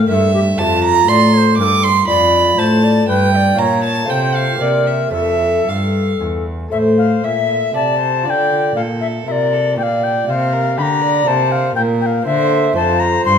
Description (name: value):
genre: classical, baroque-style sonata movement with continuo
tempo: 120 BPM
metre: 3/4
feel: rubato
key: F major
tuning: A4 = 441 Hz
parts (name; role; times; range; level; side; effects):
- tenor recorder; melody; 0.0-13.4 s; F4 to C6; -18 LUFS; left 6 dB; none
- lute; accompaniment; 0.0-13.4 s; E2 to D5; -22 LUFS; left 2 dB; none
- dark cello; bass; 0.0-13.4 s; E2 to D3; -18 LUFS; equal; none
- rich violin; second line; 0.1-13.4 s; G4 to D6; -17 LUFS; right 6 dB; none
room: wet recital hall reverb, RT60 1.5 s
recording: minimal, uncompressed stereo recording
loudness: -13 LUFS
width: side -7 dB against mid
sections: 0.0-6.7 A section; 6.7-13.4 A section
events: none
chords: 0.0 C7; 0.6 F; 2.1 G7/F; 3.6 Bbm; 4.1 F/C; 4.6 C7; 5.1 F; 6.7 Am; 8.3 Dm; 9.8 Gm7/Bb; 12.8 F